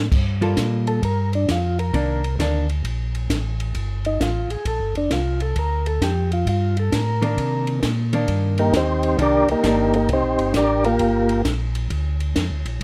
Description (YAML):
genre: soul jazz organ trio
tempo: 132 BPM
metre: 4/4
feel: swing 66% on 8ths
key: G minor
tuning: A4 = 441 Hz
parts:
  - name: mellow tonewheel organ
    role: bass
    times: 0.0-12.8 s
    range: F1 to C3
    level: -25 LUFS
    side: equal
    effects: slow rotary speaker
  - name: compact cocktail drum kit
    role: drums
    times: 0.1-12.8 s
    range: crash cymbal, hi-hat, kick drum, ride cymbal, snare drum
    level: -29 LUFS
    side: equal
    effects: none
  - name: archtop guitar, miked and amplified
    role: accompaniment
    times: 0.4-2.7, 7.2-9.9 s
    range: Eb3 to A4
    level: -27 LUFS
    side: equal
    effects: none
  - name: percussive tonewheel organ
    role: melody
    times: 0.9-11.4 s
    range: Bb3 to D5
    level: -23 LUFS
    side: equal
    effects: slow rotary speaker
room: light reverb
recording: dark, warm production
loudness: -21 LUFS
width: mono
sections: 0.1-12.8 A section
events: tonewheel organ solo 0.1-12.8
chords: 0.1 Gm9; 1.9 Cm9; 3.7 Gm9; 7.4 Cm9; 11.0 Gm7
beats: | 0.12 0.57 1.02 1.48 | 1.93 2.39 2.84 3.29 | 3.75 4.20 4.66 5.11 | 5.56 6.01 6.47 6.92 | 7.38 7.83 8.28 8.73 | 9.19 9.64 10.09 10.54 | 11.00 11.45 11.90 12.36 | 12.81